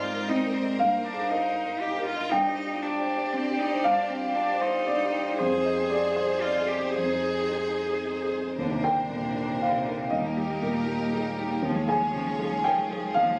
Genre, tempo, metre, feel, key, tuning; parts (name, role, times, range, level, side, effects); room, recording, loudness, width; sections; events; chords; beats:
neoclassical piano and strings; 117 BPM; 3/4; rubato; Eb major; A4 = 442 Hz
rich cello; second line; 0.0-13.4 s; C3 to Ab4; -34 LUFS; equal
dark upright piano; accompaniment; 0.0-13.4 s; Eb2 to Ab5; -28 LUFS; equal
rich chamber string section; sustained chords; 0.0-13.4 s; C4 to D5; -38 LUFS; equal
light reverb; recorded on a phone in the room, studio reverb, compression; -27 LUFS; mono
0.0-8.6 A section; 8.6-13.4 B section
0.0 Abadd9; 0.8 Eb/G; 2.3 Cmadd9/G; 5.4 Fm7; 8.6 Bbadd9/Eb; 10.1 Eb; 11.6 Db/Eb
0.29 | 0.80 1.30 1.81 | 2.31 2.82 3.33 | 3.84 4.36 4.87 | 5.38 5.90 6.42 | 6.96 7.50 8.04 | 8.58 9.10 9.61 | 10.11 10.62 11.12 | 11.63 12.14 12.65 | 13.15